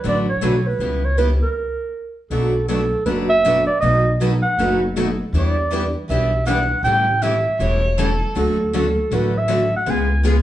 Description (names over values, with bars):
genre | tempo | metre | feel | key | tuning
acoustic string swing (jazz manouche) | 159 BPM | 4/4 | swing 63% on 8ths | B minor | A4 = 436 Hz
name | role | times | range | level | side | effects
mellow clarinet | melody | 0.0-10.3 s | A4 to G#5 | -20 LUFS | right 2 dB | none
picked steel-string acoustic guitar | accompaniment | 0.0-10.4 s | B2 to B4 | -25 LUFS | left 2 dB | none
picked steel-string acoustic guitar | accompaniment | 0.0-10.4 s | B2 to B4 | -25 LUFS | right 2 dB | none
upright bass | bass | 0.0-10.4 s | E1 to E2 | -21 LUFS | equal | none
warm violin | second line | 7.6-8.3 s | A4 to C#5 | -24 LUFS | equal | none
room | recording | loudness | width
wet club reverb, RT60 0.8 s | heard from further back in the room, nothing above 10.3 kHz | -16 LUFS | side -13 dB against mid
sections
0.0-2.3 A section; 2.3-10.4 B section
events
stop 1.6-2.3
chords
0.0 D6; 0.8 C#m7b5; 1.6 N.C.; 2.3 Bm7; 3.8 B7; 5.3 Em9; 6.8 A7; 8.3 Dmaj7; 9.9 C#7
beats
0.04 0.42 | 0.80 1.18 1.55 1.93 | 2.31 2.69 3.06 3.44 | 3.82 4.20 4.57 4.95 | 5.33 5.71 6.08 6.46 | 6.84 7.22 7.59 7.97 | 8.35 8.73 9.10 9.48 | 9.86 10.24